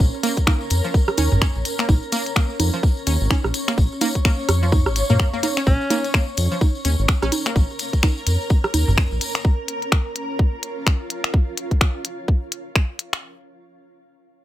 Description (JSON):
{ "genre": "minimal techno", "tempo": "127 BPM", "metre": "4/4", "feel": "swing 59% on 16ths", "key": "Bb minor", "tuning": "A4 = 439 Hz", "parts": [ { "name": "round analog bass", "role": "bass", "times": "0.0-9.2 s", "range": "Ab1 to Bb2", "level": "-20 LUFS", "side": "equal", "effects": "sidechain pumping" }, { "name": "electronic kick drum", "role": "drums", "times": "0.0-12.9 s", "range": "none", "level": "-17 LUFS", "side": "equal", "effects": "none" }, { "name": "granular cloud pad", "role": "texture", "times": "0.0-11.4 s", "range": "Db4 to Db5", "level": "-29 LUFS", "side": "equal", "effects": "built-in reverb, sidechain pumping" }, { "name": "tambourine", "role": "percussion", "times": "0.1-9.4 s", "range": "none", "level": "-31 LUFS", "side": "left 4 dB", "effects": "none" }, { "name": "resonant blip pluck", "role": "riff", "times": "0.2-7.5 s", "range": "F3 to Db4", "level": "-27 LUFS", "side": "right 1 dB", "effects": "chorus, sidechain pumping, tape echo" }, { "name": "minimal click drum kit", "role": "drums", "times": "0.2-13.2 s", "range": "finger snaps, hi-hat", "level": "-22 LUFS", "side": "left 2 dB", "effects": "none" }, { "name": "booming analog drum machine", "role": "percussion", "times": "0.5-9.0 s", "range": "congas, rim click, toms", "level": "-24 LUFS", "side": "right 3 dB", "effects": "ping-pong delay" }, { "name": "bright alto saxophone", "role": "melody", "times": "5.7-6.1 s", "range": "Db4", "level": "-26 LUFS", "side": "equal", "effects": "ping-pong delay" } ], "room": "little or no reverb", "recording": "none", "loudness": "-18 LUFS", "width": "side -14 dB against mid", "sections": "0.0-13.2 A section", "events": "drop 0.0-13.2", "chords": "0.0 Bbm" }